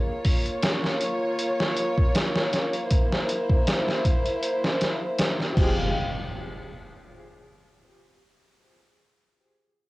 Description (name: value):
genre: trip hop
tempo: 79 BPM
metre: 4/4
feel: swing 54% on 16ths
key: unclear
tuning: A4 = 440 Hz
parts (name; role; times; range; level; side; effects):
- dark studio violin section; sustained chords; 0.0-5.9 s; Ab3 to G5; -27 LUFS; equal; vintage 12-bit sampler grit
- trip hop sampler-style drum kit; drums; 0.2-5.7 s; crash cymbal, hi-hat, kick drum, snare drum; -24 LUFS; equal; cassette tape
- warm upright piano; accompaniment; 5.5-5.9 s; F3 to Ab4; -35 LUFS; left 1 dB; tremolo, vintage 12-bit sampler grit, tape echo
- soft dub sub bass; bass; 5.6-5.9 s; F1; -32 LUFS; equal; transformer saturation
- impact; sound effects; 5.6-8.6 s; none; -32 LUFS; equal; none
room: light reverb, digital ambience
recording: home recording on cassette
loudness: -22 LUFS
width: side -20 dB against mid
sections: 0.0-5.9 A section; 5.9-9.0 B section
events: none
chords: 0.0 Db6; 2.9 C7; 5.6 Fmadd9; 5.9 N.C.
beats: 0.63 1.39 2.15 | 2.91 3.67 4.43 5.19 | 5.95 6.71 7.47 8.23